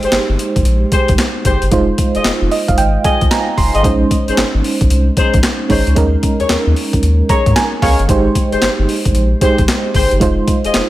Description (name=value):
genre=R&B, new jack swing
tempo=113 BPM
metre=4/4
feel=swing 64% on 16ths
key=unclear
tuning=A4 = 440 Hz
part: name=FM electric piano with tremolo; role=accompaniment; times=0.0-10.9 s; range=Ab3 to C6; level=-16 LUFS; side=right 3 dB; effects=none
part: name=dark horn section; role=stabs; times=0.0-10.8 s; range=Db4 to Eb5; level=-20 LUFS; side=left 3 dB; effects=tape echo
part: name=round analog bass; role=bass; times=0.0-10.8 s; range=F1 to Ab2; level=-16 LUFS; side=equal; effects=none
part: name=boom bap sampler-style drum kit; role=drums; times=0.0-10.9 s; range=handclaps, hi-hat, kick drum, snare drum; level=-16 LUFS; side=equal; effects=overdrive, gated reverb
room=little or no reverb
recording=none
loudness=-11 LUFS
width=side -15 dB against mid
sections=0.0-10.9 A section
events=FM electric piano fill 2.2-3.8, 7.0-8.1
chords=0.0 Abmaj7; 1.7 Fm7; 3.8 Bbm11; 6.0 Eb7sus4; 8.1 Abmaj7; 10.2 Fm7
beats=0.12 0.66 1.19 | 1.72 2.25 2.78 3.31 | 3.84 4.37 4.90 5.43 | 5.96 6.50 7.03 7.56 | 8.09 8.62 9.15 9.68 | 10.21 10.74